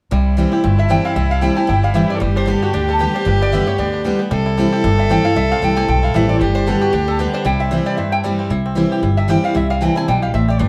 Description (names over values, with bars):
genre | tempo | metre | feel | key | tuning
bluegrass | 229 BPM | 4/4 | swing 56% on 8ths | C major | A4 = 445 Hz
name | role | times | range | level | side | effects
bluegrass banjo | melody | 0.1-10.7 s | E3 to G4 | -29 LUFS | equal | none
dark fiddle | second line | 0.1-8.4 s | E4 to A4 | -25 LUFS | equal | none
picked steel-string acoustic guitar | accompaniment | 0.1-10.7 s | G2 to G4 | -21 LUFS | equal | none
upright bass | bass | 0.1-10.7 s | G1 to D2 | -20 LUFS | equal | none
lap resonator guitar | melody | 0.8-10.7 s | F#4 to Ab5 | -24 LUFS | equal | none
room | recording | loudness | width
moderate small room reverb, RT60 0.5 s | none | -16 LUFS | mono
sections
0.1-8.5 A section; 8.5-10.7 A section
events
none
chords
0.1 C; 2.2 G; 4.3 C; 6.4 G; 7.5 C